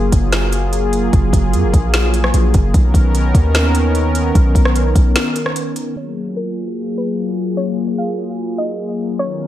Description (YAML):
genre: hip hop, atmospheric cloud-rap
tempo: 149 BPM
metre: 4/4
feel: half-time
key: F# major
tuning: A4 = 438 Hz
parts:
  - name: warm analog pad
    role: sustained chords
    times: 0.0-9.5 s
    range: D#3 to A#4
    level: -19 LUFS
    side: left 1 dB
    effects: chorus, sidechain pumping, low-pass filter
  - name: warm 808-style bass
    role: bass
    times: 0.0-5.1 s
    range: F#1 to F#2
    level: -15 LUFS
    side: equal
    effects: none
  - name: smooth R&B drum kit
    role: drums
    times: 0.1-5.9 s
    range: hi-hat, kick drum, rim click, snare drum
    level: -16 LUFS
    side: equal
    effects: none
  - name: soft round pluck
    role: melody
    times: 6.0-9.5 s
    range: A#4 to E#5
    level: -25 LUFS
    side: left 1 dB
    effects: chorus, low-pass filter, digital delay
room: little or no reverb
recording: none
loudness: -14 LUFS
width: side -13 dB against mid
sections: 0.0-6.0 A section; 6.0-9.5 B section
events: break 5.2-6.0; filter sweep 6.0-9.5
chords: 0.0 F#maj9; 2.7 Bmaj9; 6.0 F#maj9